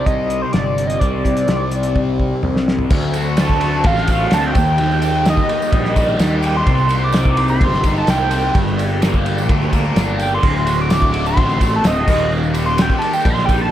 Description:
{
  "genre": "psychedelic rock",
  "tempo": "128 BPM",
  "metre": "4/4",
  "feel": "straight",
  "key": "D phrygian dominant",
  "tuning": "A4 = 437 Hz",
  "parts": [
    { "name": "overdriven synth lead", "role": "melody", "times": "0.0-13.7 s", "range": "C5 to D6", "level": "-20 LUFS", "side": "right 1 dB", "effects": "distortion, chorus, analog delay" },
    { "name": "tonewheel organ", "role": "sustained chords", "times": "0.0-13.7 s", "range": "Eb3 to Bb4", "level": "-29 LUFS", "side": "right 6 dB", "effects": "slow rotary speaker, chorus vibrato" },
    { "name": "fuzz guitar", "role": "riff", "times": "0.0-13.7 s", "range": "D2 to C5", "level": "-21 LUFS", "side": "left 2 dB", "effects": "distortion, phaser" },
    { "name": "fuzz picked electric bass", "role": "bass", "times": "0.0-13.7 s", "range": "D1 to Eb2", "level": "-20 LUFS", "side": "equal", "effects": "overdrive" },
    { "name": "cloth-damped thuddy drum kit", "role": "drums", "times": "0.1-13.6 s", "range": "crash cymbal, hi-hat, kick drum, ride cymbal, snare drum, toms", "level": "-19 LUFS", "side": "equal", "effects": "none" },
    { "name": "tambourine", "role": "percussion", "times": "2.9-13.6 s", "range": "none", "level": "-39 LUFS", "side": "right 14 dB", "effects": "none" }
  ],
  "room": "small room ambience",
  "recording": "none",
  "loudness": "-14 LUFS",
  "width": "side -12 dB against mid",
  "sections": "0.0-2.9 A section; 2.9-13.7 B section",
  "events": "drum fill 2.0-2.9; analog synth lead solo 2.9-13.7",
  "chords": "0.0 Cmadd9; 2.9 D7; 4.6 Eb; 6.7 Cm7; 8.6 Gmadd9; 10.4 D7; 12.1 Eb"
}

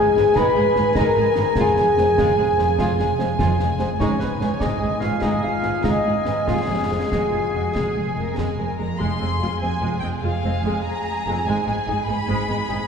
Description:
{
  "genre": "cinematic, heroic adventure film score",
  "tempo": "98 BPM (dotted quarters)",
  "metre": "12/8",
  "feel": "straight",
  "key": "F minor from 9.0 s",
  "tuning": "A4 = 440 Hz",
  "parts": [
    { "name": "warm chamber violin section", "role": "melody", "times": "0.0-12.9 s", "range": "F5 to C6", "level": "-29 LUFS", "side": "left 2 dB", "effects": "none" },
    { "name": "warm oboe", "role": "second line", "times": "0.0-8.3 s", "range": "Ab4 to B5", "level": "-32 LUFS", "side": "right 1 dB", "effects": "none" },
    { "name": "warm symphonic violin section", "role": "second line", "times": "0.0-12.9 s", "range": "D#4 to Ab5", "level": "-30 LUFS", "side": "left 1 dB", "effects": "none" },
    { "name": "rich symphonic viola section", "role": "accompaniment", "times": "0.0-12.8 s", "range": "G#3 to F4", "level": "-28 LUFS", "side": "right 1 dB", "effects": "none" },
    { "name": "warm French horn section", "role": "sustained chords", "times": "0.0-12.6 s", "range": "Ab3 to B4", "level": "-22 LUFS", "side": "left 1 dB", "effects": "none" },
    { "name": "concert harp", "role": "arpeggios", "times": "0.0-12.9 s", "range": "F2 to G#4", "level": "-33 LUFS", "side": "left 4 dB", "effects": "none" },
    { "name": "mellow trumpet section", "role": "stabs", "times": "0.0-8.4 s", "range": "Ab4 to B5", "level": "-25 LUFS", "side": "equal", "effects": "none" },
    { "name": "rich studio double bass section", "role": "bass", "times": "0.0-12.8 s", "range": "F1 to G#1", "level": "-28 LUFS", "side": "right 3 dB", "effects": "none" },
    { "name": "warm symphonic cello section", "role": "bass", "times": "0.0-12.8 s", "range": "F2 to G#2", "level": "-28 LUFS", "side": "right 2 dB", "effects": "none" },
    { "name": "concert snare drum and concert bass drum", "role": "drums", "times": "0.2-8.6 s", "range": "none", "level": "-28 LUFS", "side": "right 1 dB", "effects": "none" },
    { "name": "timpani", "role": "percussion", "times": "9.0-9.6 s", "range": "none", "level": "barely audible", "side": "none", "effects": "none" }
  ],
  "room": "wet church reverb, RT60 3.4 s",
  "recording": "recorded in a church or concert hall",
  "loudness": "-18 LUFS",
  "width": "side -6 dB against mid",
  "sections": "0.0-9.0 A section; 9.0-12.9 B section",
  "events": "none",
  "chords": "0.0 G#m; 1.6 Fm; 4.0 G#m; 6.5 Fm; 11.5 Abm"
}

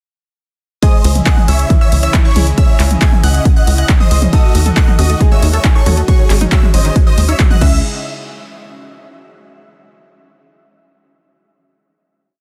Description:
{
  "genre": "uplifting trance",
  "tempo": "137 BPM",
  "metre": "4/4",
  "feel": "straight",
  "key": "C# harmonic minor",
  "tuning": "A4 = 441 Hz",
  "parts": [
    { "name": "big supersaw lead", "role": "melody", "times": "0.8-7.8 s", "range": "E4 to G#5", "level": "-24 LUFS", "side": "equal", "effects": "phaser, sidechain pumping, digital delay" },
    { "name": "analog pluck", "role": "second line", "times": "0.8-7.8 s", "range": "C#6 to G#6", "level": "-29 LUFS", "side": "equal", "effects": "chorus, cassette tape, sidechain pumping, digital delay" },
    { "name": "warm baby grand piano", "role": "second line", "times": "0.8-7.8 s", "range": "E3 to A4", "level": "-27 LUFS", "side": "equal", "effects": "digital delay" },
    { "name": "lush unison pad", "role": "sustained chords", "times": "0.8-7.8 s", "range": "C#3 to D#5", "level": "-29 LUFS", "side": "equal", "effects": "chorus, sidechain pumping" },
    { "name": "electronic kick drum", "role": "drums", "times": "0.8-7.7 s", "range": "none", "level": "-13 LUFS", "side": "equal", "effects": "none" },
    { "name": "punchy analog drum machine", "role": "drums", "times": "0.8-7.7 s", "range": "crash cymbal, handclaps, hi-hat, ride cymbal, toms", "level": "-22 LUFS", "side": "equal", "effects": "overdrive" },
    { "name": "tight sequencer bass", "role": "bass", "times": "1.0-7.8 s", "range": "G#1 to D#2", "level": "-14 LUFS", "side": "equal", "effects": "sidechain pumping" },
    { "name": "tight sequenced synth", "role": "arpeggios", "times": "4.3-7.8 s", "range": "D#3 to A4", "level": "-27 LUFS", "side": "equal", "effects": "chorus, sidechain pumping, digital delay" }
  ],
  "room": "little or no reverb",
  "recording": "dense, heavily limited modern master",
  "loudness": "-11 LUFS",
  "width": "mono",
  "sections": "0.8-7.8 drop; 7.8-9.6 final hit",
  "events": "drop 0.8-7.8",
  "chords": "0.8 C#madd9; 4.3 D#dim; 6.1 G#sus4; 7.6 C#madd9; 7.8 N.C."
}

